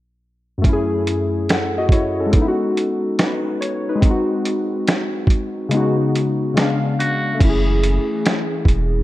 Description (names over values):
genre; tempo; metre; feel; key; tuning
lo-fi hip hop; 71 BPM; 4/4; swing 66% on 16ths; F# dorian; A4 = 439 Hz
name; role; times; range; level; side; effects
warbly lo-fi synth keys; accompaniment; 0.6-9.0 s; F#2 to F#5; -19 LUFS; left 2 dB; chorus, low-pass filter
lo-fi sampler-style drum kit; drums; 0.6-8.9 s; crash cymbal, hi-hat, kick drum, snare drum; -18 LUFS; right 1 dB; none
trumpet with metal mute; melody; 7.0-7.4 s; F#4; -25 LUFS; right 2 dB; low-pass filter
hollow soft pad; sustained chords; 7.4-9.0 s; E3 to G#4; -27 LUFS; right 1 dB; chorus, low-pass filter
warm sub bass; bass; 7.4-9.0 s; E1 to F#1; -18 LUFS; right 1 dB; none
room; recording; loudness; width
light reverb; dark, warm production; -16 LUFS; side -16 dB against mid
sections
0.6-7.4 A section; 7.4-9.0 B section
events
kick muted 5.7-7.4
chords
0.6 F#m9; 2.3 G#m7; 4.0 G#7; 5.7 C#7sus4; 6.6 C#7b9; 7.4 F#m9